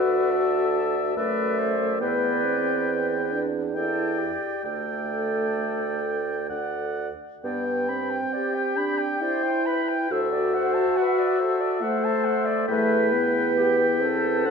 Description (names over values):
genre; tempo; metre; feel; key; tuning
classical, slow romantic movement for wind quintet; 63-73 BPM; 3/4; rubato; unclear; A4 = 441 Hz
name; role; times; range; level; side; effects
silver concert flute; melody; 0.0-14.5 s; G4 to C5; -29 LUFS; left 6 dB; none
warm oboe; second line; 0.0-14.5 s; E5 to G5; -30 LUFS; left 2 dB; none
mellow French horn; accompaniment; 0.0-14.5 s; A3 to F#4; -26 LUFS; equal; none
mellow clarinet; accompaniment; 0.0-14.5 s; B4 to B5; -30 LUFS; right 9 dB; none
dark bassoon; bass; 0.0-14.5 s; D2 to G2; -29 LUFS; right 3 dB; none
room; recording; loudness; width
moderate concert hall reverb, RT60 1.8 s; minimal, uncompressed stereo recording; -22 LUFS; side -6 dB against mid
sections
0.0-14.5 A section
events
none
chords
0.0 Dadd9; 2.0 Em7; 4.7 Dsus4; 6.5 D; 7.4 G; 10.1 D9; 12.7 Em